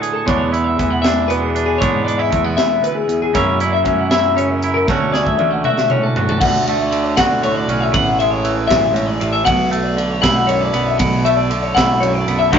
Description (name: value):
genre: math rock and midwest emo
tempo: 78 BPM (dotted quarters)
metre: 6/8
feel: straight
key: D lydian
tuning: A4 = 440 Hz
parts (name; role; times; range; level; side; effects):
- twangy electric guitar; accompaniment; 0.0-12.6 s; D2 to G#4; -19 LUFS; right 5 dB; none
- twelve-string electric guitar; arpeggios; 0.0-12.6 s; G#4 to F#5; -18 LUFS; left 4 dB; none
- crisp fusion drum kit; drums; 0.0-12.6 s; crash cymbal, hi-hat, kick drum, ride cymbal, snare drum, toms; -21 LUFS; right 1 dB; none
- fuzz picked electric bass; bass; 0.3-12.6 s; A1 to G#2; -22 LUFS; right 1 dB; overdrive
- raw garage guitar; riff; 12.5-12.6 s; D3 to F#4; -10 LUFS; equal; overdrive
room: moderate stone room reverb, RT60 1.3 s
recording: rough rehearsal-room recording, warm saturation, nothing above 7.6 kHz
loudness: -14 LUFS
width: side -7 dB against mid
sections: 0.0-6.4 A section; 6.4-12.6 B section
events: drum fill 4.9-6.4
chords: 0.0 Dsus2; 3.4 F#7; 4.9 Dmaj9; 6.4 Dmaj7; 7.9 Amaj7; 9.5 Bm7